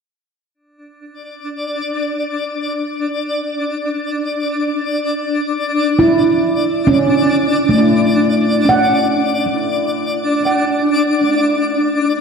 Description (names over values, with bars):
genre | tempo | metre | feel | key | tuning
ambient | free time | none | none | unclear | A4 = 442 Hz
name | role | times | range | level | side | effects
twinkling granular texture | texture | 1.2-12.2 s | D4 to D6 | -17 LUFS | left 1 dB | built-in reverb, shimmer reverb
handpan | arpeggios | 6.0-12.2 s | A3 to F#5 | -14 LUFS | right 1 dB | tape echo, shimmer reverb
room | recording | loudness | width
wet concert hall reverb, RT60 2.2 s | dark, warm production | -14 LUFS | side -5 dB against mid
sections
0.6-12.2 A section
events
none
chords
0.6 Aadd11